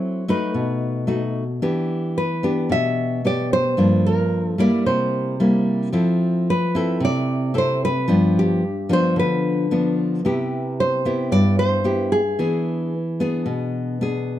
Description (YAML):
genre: bossa nova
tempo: 111 BPM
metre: 4/4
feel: straight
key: unclear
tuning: A4 = 440 Hz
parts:
  - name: nylon-string guitar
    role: melody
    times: 0.0-13.7 s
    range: G4 to E5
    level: -23 LUFS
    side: equal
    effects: none
  - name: nylon-string guitar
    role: accompaniment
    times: 0.0-14.4 s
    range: G2 to A4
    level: -19 LUFS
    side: equal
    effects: none
room: moderate studio reverb, RT60 0.9 s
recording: dark, warm production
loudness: -18 LUFS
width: side -12 dB against mid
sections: 0.0-14.4 A section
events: none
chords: 0.0 F#m7b5; 0.5 B7; 1.6 Em7; 3.8 Gm7; 4.9 C7; 5.9 Fmaj7; 8.1 G7; 10.2 Cmaj7; 12.4 E7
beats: 0.01 0.55 1.08 | 1.62 2.16 2.70 3.24 | 3.78 4.32 4.86 5.39 | 5.93 6.47 7.01 7.55 | 8.09 8.63 9.17 9.71 | 10.25 10.79 11.32 11.86 | 12.40 12.94 13.48 14.02